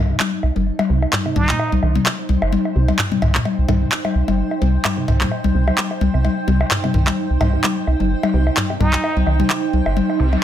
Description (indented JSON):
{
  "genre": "minimal techno",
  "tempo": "129 BPM",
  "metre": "4/4",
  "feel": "swing 55% on 16ths",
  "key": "C dorian",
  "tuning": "A4 = 442 Hz",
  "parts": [
    { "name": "resonant blip pluck", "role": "riff", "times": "0.0-10.3 s", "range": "Bb2 to G3", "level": "-26 LUFS", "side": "right 2 dB", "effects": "phaser, cassette tape, dub echo" },
    { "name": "rubbery square bass", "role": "bass", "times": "0.0-10.4 s", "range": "G1 to C2", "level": "-18 LUFS", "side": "right 1 dB", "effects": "none" },
    { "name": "granular cloud pad", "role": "texture", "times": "0.1-10.4 s", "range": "Eb4 to A5", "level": "-26 LUFS", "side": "right 6 dB", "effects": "built-in reverb" },
    { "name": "electronic handclaps", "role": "drums", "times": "0.2-9.6 s", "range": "none", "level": "-20 LUFS", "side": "equal", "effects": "small room reverb, soft clipping on snare" },
    { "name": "electronic toms and bongos", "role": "percussion", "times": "0.2-10.4 s", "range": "none", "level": "-20 LUFS", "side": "left 5 dB", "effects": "small room reverb" },
    { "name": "trumpet with plunger mute", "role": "melody", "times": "1.4-1.7, 8.8-9.2 s", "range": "Eb4", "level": "-24 LUFS", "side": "right 2 dB", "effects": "tape echo" },
    { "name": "riser", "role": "sound effects", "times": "10.1-10.4 s", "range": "none", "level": "-34 LUFS", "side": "right 2 dB", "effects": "none" }
  ],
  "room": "moderate studio reverb, RT60 0.6 s",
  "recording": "dense, heavily limited modern master",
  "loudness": "-16 LUFS",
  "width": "side -11 dB against mid",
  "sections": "0.0-10.4 A section",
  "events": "filter sweep on synth arpeggio sound 0.0-10.4; riser 10.1-10.4",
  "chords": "0.0 Cm",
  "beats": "0.20 | 0.66 1.13 1.59 2.06 | 2.52 2.99 3.45 3.92 | 4.38 4.85 5.31 5.78 | 6.24 6.71 7.17 7.64 | 8.11 8.57 9.04 9.50 | 9.96 10.43"
}